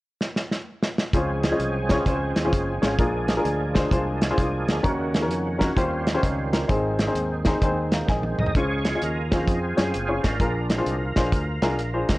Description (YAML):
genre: uptempo gospel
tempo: 130 BPM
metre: 4/4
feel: swing 65% on 8ths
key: Db major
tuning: A4 = 441 Hz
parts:
  - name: warm soul drum kit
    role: drums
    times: 0.2-12.2 s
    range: hi-hat, kick drum, snare drum, toms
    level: -24 LUFS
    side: equal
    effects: none
  - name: warm baby grand piano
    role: accompaniment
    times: 1.1-12.2 s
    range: Ab2 to Bb5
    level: -26 LUFS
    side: left 1 dB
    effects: none
  - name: fingered electric bass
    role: bass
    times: 1.1-12.2 s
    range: Gb1 to Gb2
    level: -28 LUFS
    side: equal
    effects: none
  - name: overdriven tonewheel organ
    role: sustained chords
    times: 1.2-12.2 s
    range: Db3 to Eb5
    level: -29 LUFS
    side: right 2 dB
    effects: slow rotary speaker, chorus vibrato
room: light reverb, small room ambience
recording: worn, warbling old tape, cassette tape, warbly pitch drift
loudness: -21 LUFS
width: side -19 dB against mid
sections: 0.0-1.1 A section; 1.1-8.5 B section; 8.5-12.2 C section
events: drum fill 0.2-1.1, 8.1-8.5; tonewheel organ solo 8.5-12.2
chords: 0.0 N.C.; 1.1 Dbmaj7; 3.0 Bb7; 4.8 Ebm7; 5.8 Eb13; 6.7 Ab; 8.5 Dbmaj7; 10.4 Bb7